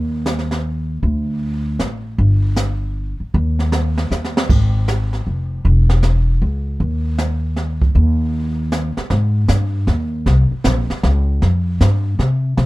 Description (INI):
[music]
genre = jazz piano trio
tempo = 156 BPM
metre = 3/4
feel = swing 65% on 8ths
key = Ab major from 9.1 s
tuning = A4 = 442 Hz
[part]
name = upright bass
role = bass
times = 0.0-12.7 s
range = Fb1 to C3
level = -16 LUFS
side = equal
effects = none
[part]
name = jazz brush drum kit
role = drums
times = 0.3-12.7 s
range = brushed snare drum, crash cymbal, hi-hat, kick drum, snare drum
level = -21 LUFS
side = right 1 dB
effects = none
[sound]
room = little or no reverb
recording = dark, warm production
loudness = -15 LUFS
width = side -19 dB against mid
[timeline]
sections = 0.0-9.1 A section; 9.1-12.7 B section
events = drum fill 4.1-4.5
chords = none